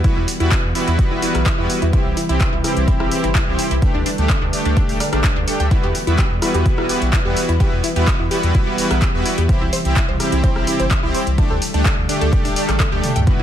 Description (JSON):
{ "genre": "progressive house", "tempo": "127 BPM", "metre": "4/4", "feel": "straight", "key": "E minor", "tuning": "A4 = 443 Hz", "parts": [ { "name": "airy breathy pad", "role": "sustained chords", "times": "0.0-13.4 s", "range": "C3 to B4", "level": "-26 LUFS", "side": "equal", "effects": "chorus, sidechain pumping" }, { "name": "wide unison pluck", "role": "arpeggios", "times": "0.0-13.4 s", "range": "D4 to G5", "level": "-26 LUFS", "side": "equal", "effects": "sidechain pumping, digital delay" }, { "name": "soft supersaw", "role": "stabs", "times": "0.0-13.4 s", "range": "G3 to B4", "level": "-22 LUFS", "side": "equal", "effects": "sidechain pumping, digital delay" }, { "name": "round analog bass", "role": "bass", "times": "0.0-13.4 s", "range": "D1 to E2", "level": "-20 LUFS", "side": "equal", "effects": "sidechain pumping" }, { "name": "deep house drum kit", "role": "drums", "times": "0.0-13.4 s", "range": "handclaps, hi-hat, rim click, toms", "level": "-24 LUFS", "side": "equal", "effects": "overdrive" }, { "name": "electronic kick drum", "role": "drums", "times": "0.0-13.4 s", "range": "none", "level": "-18 LUFS", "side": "equal", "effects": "overdrive" } ], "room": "little or no reverb", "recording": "none", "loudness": "-15 LUFS", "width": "side -10 dB against mid", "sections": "0.0-13.4 A section", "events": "filter sweep on analog synth pad 0.0-13.4; drum fill 12.8-13.3", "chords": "0.0 Emadd9; 1.9 C; 3.8 Dsus4; 5.7 Emadd9; 9.5 C; 11.4 Dsus4" }